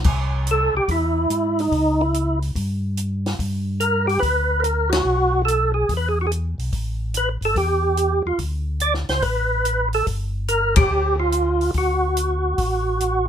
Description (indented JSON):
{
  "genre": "soul jazz organ trio",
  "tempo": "144 BPM",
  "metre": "4/4",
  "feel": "swing 67% on 8ths",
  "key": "unclear",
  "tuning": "A4 = 440 Hz",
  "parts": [
    { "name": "mellow tonewheel organ", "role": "bass", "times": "0.0-13.3 s", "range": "G1 to Ab2", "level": "-23 LUFS", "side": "equal", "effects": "overdrive, chorus vibrato, slow rotary speaker" },
    { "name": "compact cocktail drum kit", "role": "drums", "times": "0.0-13.1 s", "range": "crash cymbal, hi-hat, kick drum, ride cymbal, snare drum", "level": "-24 LUFS", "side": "left 1 dB", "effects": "none" },
    { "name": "percussive tonewheel organ", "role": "melody", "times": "0.5-13.3 s", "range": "Eb4 to D5", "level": "-20 LUFS", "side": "right 1 dB", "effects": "chorus vibrato, slow rotary speaker" }
  ],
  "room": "light reverb",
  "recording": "minimal, uncompressed stereo recording",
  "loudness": "-18 LUFS",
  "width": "side -9 dB against mid",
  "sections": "0.0-13.3 A section",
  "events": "band accent 4.8, 10.7",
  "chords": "0.0 C; 1.7 C#dim; 3.4 G; 5.1 B5; 5.9 E5; 6.7 A5; 8.4 D5; 10.1 G5; 11.7 D",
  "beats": "| 0.05 0.46 0.88 1.30 | 1.72 2.13 2.55 2.97 | 3.38 3.80 4.22 4.63 | 5.05 5.47 5.89 6.30 | 6.72 7.14 7.56 7.98 | 8.39 8.81 9.23 9.65 | 10.07 10.49 10.90 11.32 | 11.74 12.16 12.58 13.00"
}